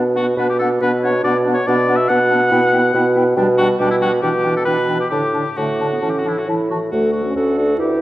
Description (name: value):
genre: quick classical-period movement for wind quintet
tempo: 139 BPM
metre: 4/4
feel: straight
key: B minor, D major from 3.4 s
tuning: A4 = 438 Hz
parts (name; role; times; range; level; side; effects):
- clear clarinet; accompaniment; 0.0-8.0 s; A3 to A4; -26 LUFS; right 4 dB; none
- warm French horn; accompaniment; 0.0-8.0 s; D3 to E4; -24 LUFS; equal; none
- mellow bassoon; bass; 0.0-8.0 s; D2 to B2; -17 LUFS; right 1 dB; none
- mellow hollow concert flute; melody; 0.2-8.0 s; A4 to A5; -25 LUFS; left 4 dB; none
- warm oboe; second line; 0.2-8.0 s; E4 to F#5; -20 LUFS; left 1 dB; none
room: wet scoring stage reverb, RT60 1.6 s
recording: worn, warbling old tape, cassette tape, vinyl crackle, warbly pitch drift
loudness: -14 LUFS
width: side -15 dB against mid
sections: 0.0-6.9 A section; 6.9-8.0 B section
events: none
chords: 0.0 Bm; 2.5 Em/B; 3.4 G/B; 4.2 Em7/B; 5.1 D/A; 6.0 A; 6.9 D